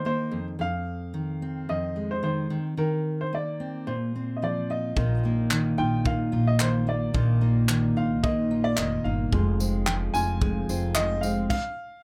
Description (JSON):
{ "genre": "acoustic pop", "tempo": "110 BPM", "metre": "4/4", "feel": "straight", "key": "unclear", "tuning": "A4 = 440 Hz", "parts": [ { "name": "clear upright piano", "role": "melody", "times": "0.0-12.0 s", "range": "Bb4 to Ab5", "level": "-33 LUFS", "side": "equal", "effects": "none" }, { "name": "fingerpicked steel-string acoustic guitar", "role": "accompaniment", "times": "0.0-11.6 s", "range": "F2 to G4", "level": "-30 LUFS", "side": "equal", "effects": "none" }, { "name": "flamenco guitar", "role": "arpeggios", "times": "5.0-11.6 s", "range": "Eb3 to F4", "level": "-38 LUFS", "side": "equal", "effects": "none" }, { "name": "upright bass", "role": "bass", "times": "5.0-11.5 s", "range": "F1 to Bb1", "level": "-29 LUFS", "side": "equal", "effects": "none" }, { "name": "natural country drum kit", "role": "drums", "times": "5.0-11.6 s", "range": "crash cymbal, handclaps, kick drum, tambourine", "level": "-31 LUFS", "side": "equal", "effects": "none" } ], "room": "light reverb", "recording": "none", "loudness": "-26 LUFS", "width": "mono", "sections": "0.0-5.0 A section; 5.0-12.0 B section", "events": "stop 11.5-12.0", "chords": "0.3 Fm7; 2.5 Cm7/Eb; 3.9 Bbsus2; 5.0 Bbsus4; 9.3 Fm" }